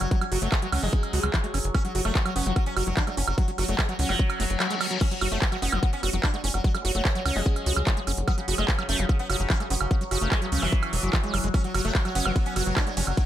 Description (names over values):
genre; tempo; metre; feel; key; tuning
psychedelic trance; 147 BPM; 4/4; straight; F# minor; A4 = 440 Hz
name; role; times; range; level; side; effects
sitar; melody; 0.0-13.2 s; C#3 to D4; -32 LUFS; equal; phaser, sidechain pumping, digital delay
overtone-sweeping drone; sustained chords; 0.0-13.3 s; F#3; -35 LUFS; left 2 dB; chorus, built-in reverb, sidechain pumping
tight sequencer bass; bass; 0.0-13.1 s; E1 to C#2; -27 LUFS; equal; none
techno drum kit; drums; 0.0-13.3 s; crash cymbal, handclaps, hi-hat, ride cymbal, woodblock; -30 LUFS; right 3 dB; none
screaming distorted acid line; riff; 0.1-13.2 s; E3 to F#4; -32 LUFS; right 1 dB; distortion, chorus, auto-pan, sidechain pumping, digital delay
electronic kick drum; drums; 0.1-13.3 s; none; -24 LUFS; equal; none
reverse cymbal and zap; sound effects; 4.3-5.0 s; none; -32 LUFS; left 5 dB; none
vowel-sweep wobble bass; second line; 5.7-7.8, 12.3-13.1 s; A3 to C#4; -42 LUFS; left 2 dB; none
room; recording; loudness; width
digital ambience; none; -23 LUFS; side -12 dB against mid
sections
0.0-13.3 A section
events
reverse cymbal 4.3-5.0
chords
0.0 F#5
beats
| 0.11 0.52 0.93 1.34 | 1.75 2.15 2.56 2.97 | 3.38 3.79 4.19 4.60 | 5.01 5.42 5.83 6.24 | 6.64 7.05 7.46 7.87 | 8.28 8.68 9.09 9.50 | 9.91 10.32 10.72 11.13 | 11.54 11.95 12.36 12.77 | 13.17